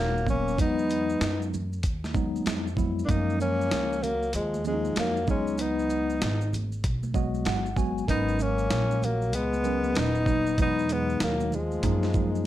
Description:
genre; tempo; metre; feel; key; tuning
hip hop, jazz-hop; 96 BPM; 4/4; swing 64% on 16ths; F# major; A4 = 439 Hz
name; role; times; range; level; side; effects
breathy tenor saxophone; melody; 0.0-12.5 s; G#3 to D#4; -28 LUFS; left 1 dB; none
breathy trombone; second line; 0.0-12.5 s; E#3 to B3; -35 LUFS; left 4 dB; none
tine electric piano; accompaniment; 0.0-12.5 s; B2 to G#5; -30 LUFS; right 1 dB; medium stereo tremolo
upright bass; bass; 0.0-12.4 s; D#1 to F#2; -30 LUFS; equal; none
maracas and congas; percussion; 0.2-12.5 s; none; -41 LUFS; right 4 dB; none
dusty soul sampler-style drum kit; drums; 0.3-12.3 s; hi-hat, kick drum, shaker, snare drum; -30 LUFS; equal; none
room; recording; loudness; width
light reverb; none; -24 LUFS; side -13 dB against mid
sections
0.0-12.5 A section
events
tine electric piano fill 6.8-8.1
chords
0.0 G#m11; 0.6 Emaj9; 3.1 F#maj9; 5.3 C#9sus4; 8.1 G#m11; 10.6 Emaj9; 11.8 F#maj13

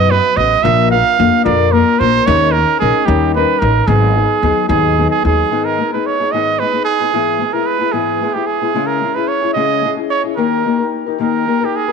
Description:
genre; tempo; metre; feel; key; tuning
mexican folk, mariachi; 74 BPM (dotted quarters); 6/8; straight; G# minor, G# harmonic minor from 5.5 s; A4 = 444 Hz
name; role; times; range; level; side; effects
clear trumpet; melody; 0.0-11.9 s; G4 to E#5; -15 LUFS; right 9 dB; none
nylon-string guitar; accompaniment; 0.0-11.9 s; G#2 to B4; -16 LUFS; left 11 dB; none
upright bass; bass; 0.0-5.4 s; G#1 to F#2; -16 LUFS; equal; none
room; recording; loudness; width
moderate echo chamber reverb, RT60 2.2 s; 1960s-style stereo with parts hard left and right; -12 LUFS; side -5 dB against mid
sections
0.0-5.5 A section; 5.5-11.9 B section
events
none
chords
0.0 B; 0.6 A#; 2.3 D#7sus4; 3.1 D#7; 3.9 G#m7; 5.5 G#m; 7.1 E/G#; 8.8 C#m; 10.4 D#

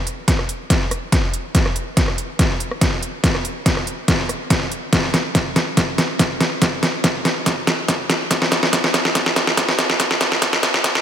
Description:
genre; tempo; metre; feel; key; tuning
heavy wobble dubstep; 142 BPM; 4/4; half-time; none; none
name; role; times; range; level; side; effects
dubstep drum kit; drums; 0.1-11.0 s; hi-hat, rim click, snare drum; -17 LUFS; equal; none
electronic kick drum; drums; 0.3-10.9 s; none; -22 LUFS; equal; none
room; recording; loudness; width
moderate lush hall reverb, RT60 2.2 s; high-pass filter; -16 LUFS; side -9 dB against mid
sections
0.0-11.0 A section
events
build-up 0.0-11.0; drum fill 0.0-11.0; filter sweep 0.0-11.0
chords
none

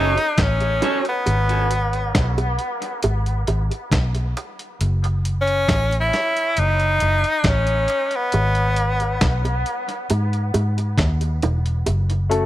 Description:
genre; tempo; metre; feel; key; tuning
dub reggae; 68 BPM; 4/4; straight; unclear; A4 = 439 Hz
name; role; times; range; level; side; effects
edgy tenor saxophone; melody; 0.0-9.5 s; B3 to E4; -22 LUFS; left 1 dB; dub echo
clean electric guitar; accompaniment; 0.0-1.0 s; C#4 to C#5; -28 LUFS; right 4 dB; warbly pitch drift, dub echo
vintage muted fingered electric bass; bass; 0.0-12.5 s; E1 to G#2; -20 LUFS; equal; none
dusty soul sampler-style drum kit; drums; 0.2-12.5 s; hi-hat, kick drum, snare drum; -23 LUFS; equal; none
bongos; percussion; 0.8-12.1 s; none; -29 LUFS; right 3 dB; high-pass filter on perc, dub echo
dark concert grand piano; stabs; 12.3-12.5 s; A3 to A4; -17 LUFS; left 4 dB; none
room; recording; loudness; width
studio reverb; echo-heavy mix; -18 LUFS; side -14 dB against mid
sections
0.0-12.5 A section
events
filter sweep on drum 1.3-8.3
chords
0.0 F#m; 1.3 G#m; 4.8 F#m; 8.3 G#m; 11.9 F#m

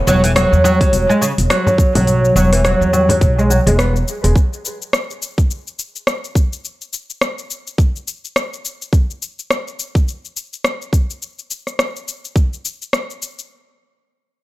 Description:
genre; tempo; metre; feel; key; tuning
organic downtempo; 105 BPM; 4/4; swing 58% on 16ths; unclear; A4 = 440 Hz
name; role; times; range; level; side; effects
oud; arpeggios; 0.1-4.3 s; C#3 to B3; -15 LUFS; right 1 dB; low-pass filter, analog delay
upright bass; bass; 0.1-4.3 s; E1 to E2; -15 LUFS; equal; sidechain pumping
afro-pop drum kit; drums; 0.1-13.5 s; hi-hat, rim click, shaker; -20 LUFS; left 1 dB; studio reverb
electronic kick drum; drums; 0.8-12.5 s; none; -14 LUFS; equal; studio reverb
frame drum; percussion; 1.7-3.2 s; none; -20 LUFS; left 1 dB; none
room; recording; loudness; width
small room ambience; dry, gritty hardware recording; -14 LUFS; side -17 dB against mid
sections
0.0-13.5 A section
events
filter sweep on oud 0.0-4.4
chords
0.0 E5; 4.4 N.C.

